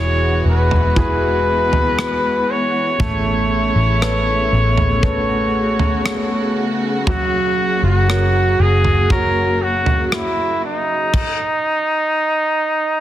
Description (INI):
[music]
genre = pop ballad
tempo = 59 BPM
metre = 4/4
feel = straight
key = unclear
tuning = A4 = 440 Hz
[part]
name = warm trumpet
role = melody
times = 0.0-13.0 s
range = D#4 to C#5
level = -18 LUFS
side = equal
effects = none
[part]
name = clear concert grand piano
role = accompaniment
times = 0.0-11.2 s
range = E3 to C#5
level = -24 LUFS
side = right 3 dB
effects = none
[part]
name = dark studio string section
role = sustained chords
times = 0.0-11.1 s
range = C#3 to F#4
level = -23 LUFS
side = equal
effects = none
[part]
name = vintage muted fingered electric bass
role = bass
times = 0.0-10.6 s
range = E1 to A1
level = -18 LUFS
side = equal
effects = none
[part]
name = modern studio drum kit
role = drums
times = 0.7-11.4 s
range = crash cymbal, kick drum, rim click, toms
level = -21 LUFS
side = equal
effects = soft clipping on snare
[sound]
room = light reverb, small room ambience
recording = dense, heavily limited modern master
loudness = -14 LUFS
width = side -12 dB against mid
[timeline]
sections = 0.0-13.0 A section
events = none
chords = 0.0 Eadd9; 3.0 Aadd9; 7.1 F#; 11.1 N.C.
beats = 0.97 1.99 | 3.00 4.02 5.04 6.05 | 7.07 8.09 9.10 10.12 | 11.14 12.15